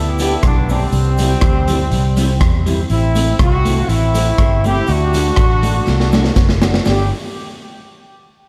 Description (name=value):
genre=ska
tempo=121 BPM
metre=4/4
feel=straight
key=G major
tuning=A4 = 440 Hz
part: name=warm horn section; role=melody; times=0.0-7.1 s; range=G3 to G4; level=-22 LUFS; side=equal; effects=dub echo
part: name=vintage muted fingered electric bass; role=bass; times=0.0-7.1 s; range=F#1 to E2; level=-19 LUFS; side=equal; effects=none
part: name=electric guitar at the edge of break-up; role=accompaniment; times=0.2-7.0 s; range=G3 to G4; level=-25 LUFS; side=equal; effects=tube saturation, analog chorus
part: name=raw garage drum kit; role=drums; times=0.2-7.0 s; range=hi-hat, kick drum, rim click, snare drum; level=-20 LUFS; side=equal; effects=none
part: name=cabasa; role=percussion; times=0.2-7.1 s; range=none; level=-45 LUFS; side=equal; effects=none
room=light reverb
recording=dark, warm production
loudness=-15 LUFS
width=mono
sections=0.0-6.9 A section; 6.9-8.5 B section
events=drum fill 5.9-6.9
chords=0.0 G; 0.9 C; 2.9 Am; 4.9 D; 6.9 G